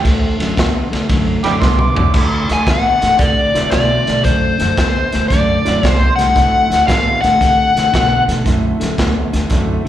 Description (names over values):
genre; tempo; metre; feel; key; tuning
electric blues shuffle; 114 BPM; 4/4; swing 66% on 8ths; D mixolydian; A4 = 440 Hz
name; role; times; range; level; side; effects
overdriven harmonica; second line; 0.0-2.1 s; G5 to D6; -19 LUFS; right 6 dB; slapback echo
clear upright piano; accompaniment; 0.0-9.9 s; F#3 to F#4; -25 LUFS; right 6 dB; slapback echo
clean electric guitar; riff; 0.0-9.9 s; D3 to B3; -20 LUFS; left 2 dB; slapback echo
upright bass; bass; 0.0-9.8 s; C2 to C3; -20 LUFS; equal; none
crunchy breakbeat drum kit; drums; 0.0-9.7 s; crash cymbal, hi-hat, kick drum, ride cymbal, snare drum, toms; -17 LUFS; right 1 dB; none
dark smooth lead guitar; melody; 2.5-8.2 s; C5 to G#5; -14 LUFS; left 2 dB; overdrive, slapback echo
room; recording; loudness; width
moderate club reverb, RT60 0.5 s; live gig heard through the venue's PA, recital hall reverb; -12 LUFS; side -11 dB against mid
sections
0.0-2.1 A section; 2.1-9.9 B section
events
harmonica solo 0.0-2.1; drum fill 1.6-2.1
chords
0.1 D9